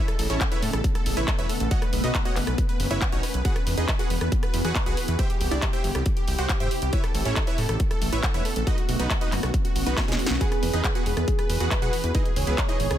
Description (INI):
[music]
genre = uplifting trance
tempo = 138 BPM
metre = 4/4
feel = straight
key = E major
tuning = A4 = 440 Hz
[part]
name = supersaw stab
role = melody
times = 0.0-13.0 s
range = G#3 to G5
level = -30 LUFS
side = right 1 dB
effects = sidechain pumping, dub echo
[part]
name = shimmering ambient pad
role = sustained chords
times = 0.0-13.0 s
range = C3 to G#4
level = -32 LUFS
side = equal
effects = chorus, built-in reverb, sidechain pumping
[part]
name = big-room dance drum kit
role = drums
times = 0.1-13.0 s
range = handclaps, hi-hat, rim click, snare drum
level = -31 LUFS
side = equal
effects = sidechain pumping on hats, sidechain pumping on cymbals
[part]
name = fat analog bass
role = bass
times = 0.2-13.0 s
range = E1 to A2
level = -27 LUFS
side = equal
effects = sidechain pumping
[part]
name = electronic kick drum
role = drums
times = 0.4-12.7 s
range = none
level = -25 LUFS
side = equal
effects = none
[part]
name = warm velvety synth lead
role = second line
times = 10.4-13.0 s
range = G#4 to C#5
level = -30 LUFS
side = right 1 dB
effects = chorus, ping-pong delay
[sound]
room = little or no reverb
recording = none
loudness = -22 LUFS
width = side -11 dB against mid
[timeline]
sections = 0.0-13.0 A section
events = drum fill 10.0-10.4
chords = 0.0 Aadd9; 1.7 Badd9; 3.5 Eadd9; 5.2 C; 6.9 Aadd9; 8.7 Badd9; 10.4 Eadd9; 12.1 C#madd9